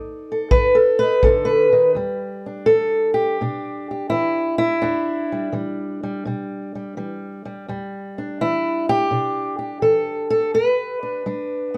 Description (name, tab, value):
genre	acoustic country blues, solo or duo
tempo	84 BPM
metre	4/4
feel	swing 68% on 8ths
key	E minor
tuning	A4 = 443 Hz
part	fingerpicked old ladder-braced acoustic guitar	melody	0.0-11.8 s	E2 to D5	-21 LUFS	equal	none
part	kick drum	drums	0.5-1.5 s	none	-22 LUFS	equal	none
room	light reverb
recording	dark, warm production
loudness	-20 LUFS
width	mono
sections	0.0-2.0 A section; 2.0-11.8 B section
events	steel-string acoustic guitar solo 0.0-2.0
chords	0.0 B7#9; 2.0 Em7